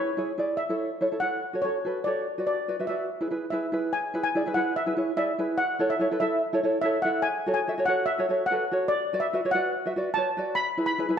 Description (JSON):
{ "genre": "calypso", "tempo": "145 BPM", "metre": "4/4", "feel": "straight", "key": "unclear", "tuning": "A4 = 440 Hz", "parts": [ { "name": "steel pan", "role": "melody", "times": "0.0-11.2 s", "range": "C#5 to B5", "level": "-28 LUFS", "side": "left 1 dB", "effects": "none" }, { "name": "tenor ukulele", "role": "accompaniment", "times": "0.0-11.2 s", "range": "E4 to E5", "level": "-27 LUFS", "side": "equal", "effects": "none" } ], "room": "moderate scoring stage reverb, RT60 1.6 s", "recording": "dark, warm production", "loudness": "-24 LUFS", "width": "side -8 dB against mid", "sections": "0.0-3.9 A section; 3.9-11.2 B section", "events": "none", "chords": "0.0 E7; 0.6 A; 1.4 F#m; 2.3 Bm; 3.1 E; 5.6 A; 7.3 F#m; 8.9 Bm; 10.6 E" }